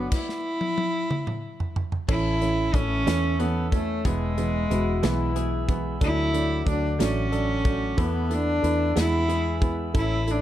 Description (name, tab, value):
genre	six-eight pop ballad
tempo	61 BPM (dotted quarters)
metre	6/8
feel	straight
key	A major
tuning	A4 = 441 Hz
part	rich cello	melody	0.0-10.4 s	G#3 to E4	-27 LUFS	equal	none
part	dark upright piano	accompaniment	0.0-10.4 s	E3 to E4	-30 LUFS	right 6 dB	none
part	glass harmonica	sustained chords	0.0-10.4 s	A4 to E6	-39 LUFS	equal	none
part	direct-recorded clean electric guitar	arpeggios	0.0-10.4 s	E3 to A4	-37 LUFS	left 8 dB	none
part	vintage muted fingered electric bass	bass	0.0-10.4 s	E1 to E2	-27 LUFS	equal	none
part	modern studio drum kit	drums	0.1-10.4 s	crash cymbal, hi-hat, kick drum, snare drum, toms	-27 LUFS	equal	none
part	mellow French horn section	second line	4.7-5.9 s	E4 to F#4	-33 LUFS	left 6 dB	none
room	studio ambience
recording	dark, warm production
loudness	-22 LUFS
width	side -12 dB against mid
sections	0.0-2.1 A section; 2.1-10.4 A section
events	drum fill 0.1-2.1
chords	0.1 N.C.; 2.1 A; 4.1 E; 6.0 D; 8.0 Esus4; 9.0 E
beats	| 0.12 1.10 | 2.09 3.07 | 4.05 5.03 | 6.02 7.00 | 7.98 8.96 | 9.95